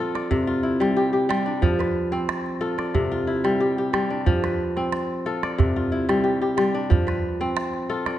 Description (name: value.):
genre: west african traditional, West African string and xylophone music.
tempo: 91 BPM.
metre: 4/4.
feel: straight.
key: F lydian.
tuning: A4 = 442 Hz.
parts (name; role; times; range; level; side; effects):
kora; arpeggios; 0.0-8.2 s; C3 to D5; -22 LUFS; left 1 dB; none.
calabash; percussion; 0.2-8.2 s; none; -25 LUFS; right 3 dB; none.
room: wet recital hall reverb, RT60 1.6 s.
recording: dark, warm production, nothing above 10.3 kHz.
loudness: -20 LUFS.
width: side -12 dB against mid.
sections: 0.0-8.2 A section.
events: none.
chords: 0.3 C; 1.6 F; 3.0 C; 4.3 F; 5.6 C; 6.9 F.